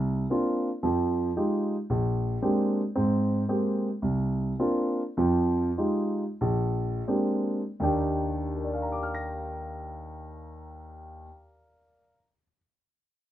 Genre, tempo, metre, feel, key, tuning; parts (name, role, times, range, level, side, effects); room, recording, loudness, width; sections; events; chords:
jazz; 79-113 BPM; 4/4; swing 69% on 8ths; Eb major; A4 = 440 Hz
warm grand piano; solo; 0.0-12.6 s; Bb1 to Bb6; -26 LUFS; equal
light reverb; rough home demo mix; -25 LUFS; side -12 dB against mid
0.0-7.8 A section; 7.8-13.3 B section
slowing down 2.9-7.8
0.0 C9sus4; 0.8 Fm9; 1.9 Bb13; 2.9 Abmaj9; 4.0 C9sus4; 5.2 Fm9; 6.4 Bb13; 7.8 Ebmaj7